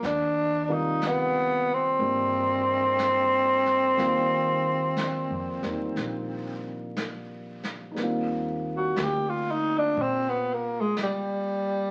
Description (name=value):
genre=jazz ballad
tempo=60 BPM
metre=4/4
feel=swing 68% on 8ths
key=Eb major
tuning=A4 = 445 Hz
part: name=growling tenor saxophone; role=melody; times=0.0-11.9 s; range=G3 to G4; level=-27 LUFS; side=equal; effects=none
part: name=dark baby grand piano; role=accompaniment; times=0.0-11.9 s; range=C3 to Bb4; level=-36 LUFS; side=equal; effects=none
part: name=upright bass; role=bass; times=0.0-11.9 s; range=Bb1 to Bb2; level=-39 LUFS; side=equal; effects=none
part: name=jazz brush drum kit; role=drums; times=0.0-11.9 s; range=brushed snare drum, hi-hat, snare drum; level=-40 LUFS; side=equal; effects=none
room=wet studio reverb, RT60 0.8 s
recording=very old 78 rpm record, vinyl crackle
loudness=-26 LUFS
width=mono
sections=0.0-8.0 A section; 8.0-11.9 B section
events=tenor saxophone solo 8.0-11.9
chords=0.0 Eb69